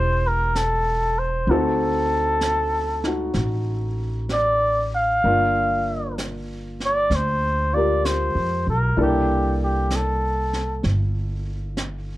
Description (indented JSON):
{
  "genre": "jazz ballad",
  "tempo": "64 BPM",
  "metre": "4/4",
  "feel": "swing 66% on 8ths",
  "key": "unclear",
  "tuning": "A4 = 440 Hz",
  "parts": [
    { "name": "trumpet with cup mute", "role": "melody", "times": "0.0-10.9 s", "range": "G4 to F5", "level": "-22 LUFS", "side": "equal", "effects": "none" },
    { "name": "warm baby grand piano", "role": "accompaniment", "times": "0.0-12.2 s", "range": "Bb3 to C5", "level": "-26 LUFS", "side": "left 1 dB", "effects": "none" },
    { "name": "upright bass", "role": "bass", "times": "0.0-12.2 s", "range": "E1 to F2", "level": "-24 LUFS", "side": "equal", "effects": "none" },
    { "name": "jazz brush drum kit", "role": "drums", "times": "0.6-12.2 s", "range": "brushed snare drum, hi-hat, snare drum", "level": "-33 LUFS", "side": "right 1 dB", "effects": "none" }
  ],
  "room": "light reverb",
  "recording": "worn, warbling old tape, cassette tape, warbly pitch drift",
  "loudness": "-19 LUFS",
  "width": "side -16 dB against mid",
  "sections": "0.0-12.2 A section",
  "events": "none",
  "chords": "0.0 Am7; 1.5 D7b9; 5.2 Gm7; 9.0 C13",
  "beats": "0.54 | 1.47 2.40 3.33 4.28 | 5.22 6.16 7.10 8.04 | 8.97 9.90 10.84 11.76"
}